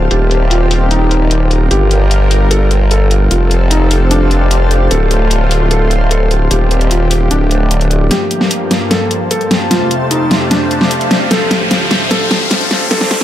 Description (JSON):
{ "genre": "heavy wobble dubstep", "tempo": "150 BPM", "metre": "4/4", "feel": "half-time", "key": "G minor", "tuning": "A4 = 440 Hz", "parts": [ { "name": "lush unison pad", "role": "sustained chords", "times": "0.0-13.2 s", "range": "D2 to Bb4", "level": "-19 LUFS", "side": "equal", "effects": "chorus" }, { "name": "formant-sweep wobble bass", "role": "bass", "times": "0.0-8.1 s", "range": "D1 to G1", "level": "-11 LUFS", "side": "equal", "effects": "chorus, overdrive" }, { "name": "granular cloud pad", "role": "texture", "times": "0.0-13.2 s", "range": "D4 to A5", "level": "-20 LUFS", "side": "left 1 dB", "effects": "built-in reverb" }, { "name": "felt-muted upright piano", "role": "melody", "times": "0.1-13.2 s", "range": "D4 to A4", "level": "-19 LUFS", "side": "equal", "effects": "low-pass filter, dub echo" }, { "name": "dubstep drum kit", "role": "drums", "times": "0.1-13.2 s", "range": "hi-hat, snare drum", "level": "-15 LUFS", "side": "left 1 dB", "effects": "low-pass filter on hats, low-pass filter on cymbals, low-pass filter on snare, low-pass filter on room" }, { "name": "riser", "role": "sound effects", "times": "9.9-13.2 s", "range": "none", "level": "-19 LUFS", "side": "left 2 dB", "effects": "none" } ], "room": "little or no reverb", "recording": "high-pass filter", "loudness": "-10 LUFS", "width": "side -12 dB against mid", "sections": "0.0-8.1 A section; 8.1-13.2 B section", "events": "build-up 8.1-13.2; drum fill 8.1-13.2; filter sweep 8.1-13.2; riser 9.9-13.2", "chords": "0.1 Cm/Eb; 1.7 Gm7; 3.3 F; 4.9 Dm; 6.5 Cm/Eb; 7.3 Dsus4; 8.1 Gm7; 9.7 F; 11.3 Dm" }